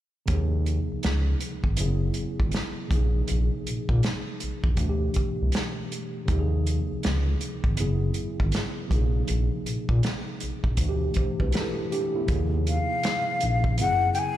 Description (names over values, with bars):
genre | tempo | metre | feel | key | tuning
R&B, neo-soul | 80 BPM | 4/4 | swing 64% on 16ths | unclear | A4 = 440 Hz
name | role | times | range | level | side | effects
tine electric piano | accompaniment | 0.3-14.4 s | Cb3 to C5 | -30 LUFS | equal | overdrive, fast stereo tremolo, slapback echo
smooth synth bass | bass | 0.3-14.1 s | Gb1 to Bb2 | -25 LUFS | equal | none
warm soul drum kit | drums | 0.3-14.4 s | hi-hat, kick drum, snare drum | -28 LUFS | equal | none
breathy jazz flute | melody | 12.7-14.4 s | F5 to Ab5 | -24 LUFS | left 4 dB | slapback echo
room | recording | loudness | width
light reverb | live gig heard through the venue's PA, club reverb | -23 LUFS | side -13 dB against mid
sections
0.3-12.3 A section; 12.3-14.4 B section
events
none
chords
0.3 Eb9sus4; 1.8 Gb9sus4; 2.9 Bb9sus4; 4.8 Dsus4; 6.3 Eb9sus4; 7.8 Gb9sus4; 8.9 Bb9sus4; 10.8 D9sus4; 12.3 Ebsus24; 13.8 Gb9sus4